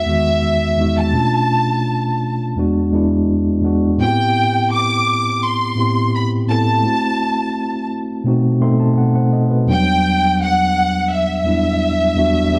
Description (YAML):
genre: soul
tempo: 84 BPM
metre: 4/4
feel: straight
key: E minor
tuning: A4 = 440 Hz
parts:
  - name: warm studio violin section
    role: melody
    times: 0.0-12.6 s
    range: E5 to D6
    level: -20 LUFS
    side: equal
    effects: slapback echo
  - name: mellow tine electric piano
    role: accompaniment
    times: 0.0-12.6 s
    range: E2 to C6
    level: -18 LUFS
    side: equal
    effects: none
room: light reverb, small room ambience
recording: dark, warm production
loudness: -17 LUFS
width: mono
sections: 0.0-12.6 A section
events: tine electric piano fill 8.3-9.7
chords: 0.0 Emaj7; 1.1 Bm7b5; 2.6 E7; 4.0 Am7; 6.8 F#m7b5; 8.3 B7b9; 9.7 Em7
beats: 0.44 | 1.15 1.86 2.57 3.29 | 4.00 4.71 5.42 6.13 | 6.84 7.55 8.27 8.97 | 9.69 10.40 11.11 11.82 | 12.53